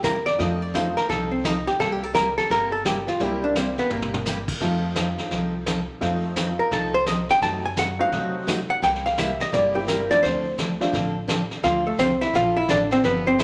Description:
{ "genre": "country, western swing", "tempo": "171 BPM", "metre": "4/4", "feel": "swing 64% on 8ths", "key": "unclear", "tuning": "A4 = 439 Hz", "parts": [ { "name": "archtop guitar, miked and amplified", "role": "melody", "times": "0.0-13.4 s", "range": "A3 to A5", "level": "-24 LUFS", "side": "equal", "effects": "none" }, { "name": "picked steel-string acoustic guitar", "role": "accompaniment", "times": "0.0-13.4 s", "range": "C3 to A4", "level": "-31 LUFS", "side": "equal", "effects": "none" }, { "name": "upright bass", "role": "bass", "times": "0.0-13.4 s", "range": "G1 to C3", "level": "-36 LUFS", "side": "equal", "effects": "none" }, { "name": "vintage brush drum kit", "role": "drums", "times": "0.0-13.4 s", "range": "brushed snare drum, crash cymbal, hi-hat, kick drum, snare drum, toms", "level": "-32 LUFS", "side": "equal", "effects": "none" }, { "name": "honky-tonk upright piano", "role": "accompaniment", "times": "0.4-0.9, 3.2-10.9 s", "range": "F3 to G4", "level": "-31 LUFS", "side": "equal", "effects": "none" } ], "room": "wet large studio reverb, RT60 1.1 s", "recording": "none", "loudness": "-23 LUFS", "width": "mono", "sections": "0.0-13.4 A section", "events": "hollow-body jazz guitar solo 0.0-13.4; drum fill 3.9-4.3", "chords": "0.4 F7; 1.8 C7; 4.6 F7; 7.4 F#dim7; 8.8 C7; 10.2 Dm7", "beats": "0.04 | 0.39 0.74 1.09 1.45 | 1.80 2.15 2.50 2.85 | 3.20 3.56 3.91 4.26 | 4.61 4.96 5.31 5.66 | 6.01 6.37 6.72 7.07 | 7.42 7.77 8.12 8.47 | 8.82 9.18 9.53 9.88 | 10.23 10.58 10.93 11.28 | 11.63 11.98 12.34 12.69 | 13.04 13.39" }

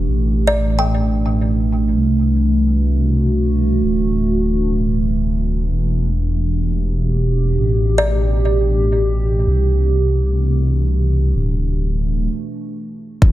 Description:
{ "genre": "future garage", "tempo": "free time", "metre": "none", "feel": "none", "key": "unclear", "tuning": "A4 = 440 Hz", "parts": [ { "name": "warbly tape-like pad", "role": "sustained chords", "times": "0.0-12.3 s", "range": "B2 to G4", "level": "-20 LUFS", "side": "right 2 dB", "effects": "chorus, built-in reverb, phaser, sidechain pumping" }, { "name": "dark detuned saw bass", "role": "bass", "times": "0.0-13.3 s", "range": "D1 to C2", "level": "-17 LUFS", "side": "equal", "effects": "sidechain pumping" }, { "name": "kalimba", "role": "melody", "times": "0.5-1.3, 8.0-8.2 s", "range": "D5 to G5", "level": "-21 LUFS", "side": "left 1 dB", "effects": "tape echo" }, { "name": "electronic kick drum", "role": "drums", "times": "13.2-13.3 s", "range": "none", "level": "-9 LUFS", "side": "equal", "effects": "overdrive" } ], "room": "light reverb, digital ambience", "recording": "dense, heavily limited modern master", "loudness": "-15 LUFS", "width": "side -14 dB against mid", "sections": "0.0-13.2 A section", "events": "break 12.3-13.2", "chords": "0.1 A5; 2.0 Cmaj9; 3.8 D; 5.7 Em7; 7.6 A5; 9.5 Cmaj9; 11.3 D5", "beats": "free time" }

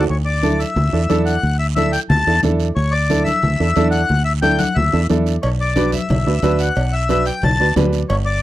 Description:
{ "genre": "latin, cumbia", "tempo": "180 BPM", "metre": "4/4", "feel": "straight", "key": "D major", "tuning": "A4 = 440 Hz", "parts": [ { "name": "accordion", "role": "melody", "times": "0.0-8.4 s", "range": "C#5 to A5", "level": "-20 LUFS", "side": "left 3 dB", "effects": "none" }, { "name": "clear upright piano", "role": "accompaniment", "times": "0.0-8.0 s", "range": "D4 to B4", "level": "-20 LUFS", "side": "right 5 dB", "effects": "none" }, { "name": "fingered electric bass", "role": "bass", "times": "0.0-8.4 s", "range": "G1 to E2", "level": "-18 LUFS", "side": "equal", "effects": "none" }, { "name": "guiro", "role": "percussion", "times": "0.1-8.4 s", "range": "none", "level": "-34 LUFS", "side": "right 13 dB", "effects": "none" }, { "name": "congas", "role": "percussion", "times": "0.4-7.9 s", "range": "none", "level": "-22 LUFS", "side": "left 3 dB", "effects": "none" }, { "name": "cowbell and timbales", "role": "percussion", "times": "5.4-8.3 s", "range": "none", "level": "-28 LUFS", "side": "right 4 dB", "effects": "none" } ], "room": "light reverb", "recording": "dry, close 1970s-style studio recording", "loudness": "-14 LUFS", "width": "side -14 dB against mid", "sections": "0.1-8.4 A section", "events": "none", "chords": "0.1 Dsus2; 5.4 Bm7", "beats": "| 0.10 0.43 0.77 1.10 | 1.43 1.76 2.10 2.43 | 2.77 3.10 3.43 3.77 | 4.10 4.43 4.76 5.10 | 5.43 5.76 6.10 6.43 | 6.76 7.10 7.43 7.76 | 8.10" }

